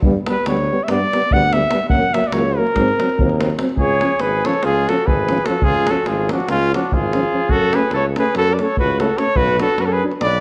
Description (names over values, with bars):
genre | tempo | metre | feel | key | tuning
balkan folk, Balkan brass band | 290 BPM (eighths) | 9/8 | straight | C# phrygian dominant from 3.8 s | A4 = 439 Hz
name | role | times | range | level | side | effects
mellow euphonium | accompaniment | 0.0-10.1 s | A#3 to D4 | -27 LUFS | equal | none
warm euphonium | accompaniment | 0.0-10.1 s | E#3 to A3 | -30 LUFS | equal | none
warm tuba | bass | 0.0-10.4 s | G#1 to G#2 | -24 LUFS | equal | none
davul | percussion | 0.0-10.3 s | none | -25 LUFS | equal | none
mellow cornet | melody | 0.3-10.4 s | E#4 to F#5 | -21 LUFS | equal | none
mellow trumpet | second line | 3.8-10.4 s | C#4 to B4 | -26 LUFS | equal | none
room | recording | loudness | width
moderate recital hall reverb, RT60 1.4 s | none | -17 LUFS | mono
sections
0.0-3.8 A section; 3.8-10.4 B section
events
cornet solo 0.0-3.8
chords
0.0 G; 1.9 F#; 2.7 G#7; 3.8 C#; 7.5 F#m; 9.4 Bm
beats
| 0.03 0.24 0.45 0.66 0.86 1.07 1.28 1.49 1.70 | 1.91 2.12 2.32 2.53 2.74 2.95 3.15 3.36 3.57 | 3.78 3.98 4.19 4.40 4.61 4.81 5.02 5.23 5.44 | 5.64 5.85 6.06 6.26 6.47 6.68 6.88 7.09 7.30 | 7.50 7.71 7.92 8.12 8.33 8.54 8.74 8.95 9.15 | 9.36 9.57 9.77 9.98 10.18 10.39